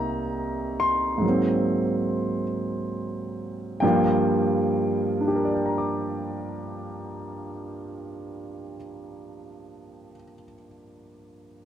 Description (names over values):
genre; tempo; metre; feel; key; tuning
solo jazz; 43-53 BPM; 4/4; swing 66% on 8ths, rubato; G minor; A4 = 444 Hz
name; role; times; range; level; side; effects
warm grand piano; solo; 0.0-11.7 s; C2 to D6; -24 LUFS; right 1 dB; none
room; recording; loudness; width
light reverb; dark, warm production; -22 LUFS; side -10 dB against mid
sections
0.0-3.8 A section; 3.8-9.3 B section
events
slowing down 0.0-3.8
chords
0.0 Cm7; 1.2 Ab9; 3.8 Gm7